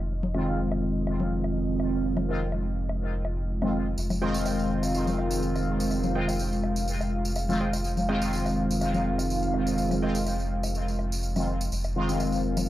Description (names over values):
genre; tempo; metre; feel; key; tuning
dub techno; 124 BPM; 4/4; swing 54% on 16ths; F minor; A4 = 440 Hz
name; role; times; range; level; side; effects
dark analog pad; sustained chords; 0.0-12.7 s; Ab3 to F5; -33 LUFS; equal; chorus
soft dub sub bass; bass; 0.0-12.7 s; F1; -30 LUFS; equal; tube saturation
congas and woodblock; percussion; 0.2-12.7 s; none; -35 LUFS; left 3 dB; dub echo
resonant sweep polysynth; stabs; 0.3-12.7 s; Eb3 to F4; -28 LUFS; equal; chorus, phaser, dub echo
tambourine; percussion; 4.0-12.7 s; none; -38 LUFS; right 2 dB; none
warbly lo-fi synth keys; riff; 4.2-10.2 s; Ab4 to G5; -40 LUFS; right 3 dB; chorus, dub echo
room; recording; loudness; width
little or no reverb; dry, gritty hardware recording, transformer saturation; -25 LUFS; side -14 dB against mid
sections
0.0-11.7 A section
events
filter sweep on analog polysynth 0.0-11.7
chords
0.0 Fm7